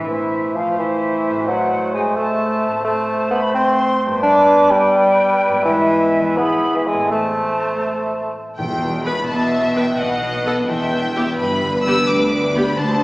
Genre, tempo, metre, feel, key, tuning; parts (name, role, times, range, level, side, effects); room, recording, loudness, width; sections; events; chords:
classical; 86 BPM (dotted quarters); 6/8; rubato; A minor, E minor from 8.6 s; A4 = 436 Hz
bright flute section; second line; 0.0-8.3 s; E5 to D6; -24 LUFS; equal
dark cor anglais; second line; 0.0-8.3 s; G#4 to C5; -24 LUFS; equal
warm clarinet; second line; 0.0-8.3 s; G3 to E4; -24 LUFS; equal
warm bassoon; accompaniment; 0.0-8.3 s; E3 to D4; -17 LUFS; equal
concert harp; arpeggios; 0.0-13.0 s; E2 to E5; -25 LUFS; left 1 dB
warm symphonic violin section; melody; 8.6-13.0 s; E5 to E6; -23 LUFS; left 1 dB
rich symphonic cello section; bass; 8.6-13.0 s; D2 to B2; -24 LUFS; right 1 dB
warm symphonic double bass section; bass; 8.6-13.0 s; E1 to D2; -27 LUFS; right 1 dB
timpani; percussion; 8.6-9.3 s; E2; -32 LUFS; equal
clear symphonic viola section; accompaniment; 9.1-12.7 s; B3 to B4; -24 LUFS; equal
warm symphonic violin section; second line; 9.3-13.0 s; B4 to G5; -22 LUFS; equal
wet scoring stage reverb, RT60 1.6 s; heard from further back in the room, small speaker sound; -15 LUFS; side -20 dB against mid
0.0-8.6 A section; 8.6-13.0 B section
0.1 Am; 1.5 Adim7; 2.8 Am; 4.2 G; 5.7 E/G#; 6.4 E; 7.1 Am; 8.6 Em; 10.0 B7; 10.7 Em; 11.4 G